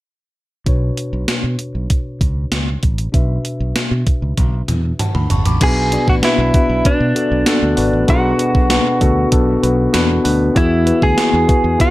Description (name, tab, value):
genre	1980s-style pop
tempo	97 BPM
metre	4/4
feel	straight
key	B minor, B dorian from 5.6 s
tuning	A4 = 443 Hz
part	mellow tine electric piano	accompaniment	0.7-11.9 s	B2 to D6	-18 LUFS	left 2 dB	none
part	fingered electric bass	bass	0.7-11.8 s	G1 to B2	-19 LUFS	equal	none
part	gated 80s digital drum machine	drums	0.7-11.9 s	crash cymbal, hi-hat, kick drum, snare drum, toms	-16 LUFS	equal	gated reverb, gated reverb snare
part	direct-recorded clean electric guitar	melody	5.6-11.9 s	D4 to G#4	-18 LUFS	right 1 dB	tape echo
room	light reverb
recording	none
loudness	-13 LUFS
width	side -17 dB against mid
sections	0.7-5.6 A section; 5.6-11.9 B section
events	drum fill 4.4-5.6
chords	0.7 Bmadd9; 5.6 Bm; 10.6 Eadd9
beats	| 0.66 1.28 1.90 2.52 | 3.14 3.76 4.38 4.99 | 5.61 6.23 6.85 7.47 | 8.09 8.71 9.32 9.94 | 10.56 11.18 11.80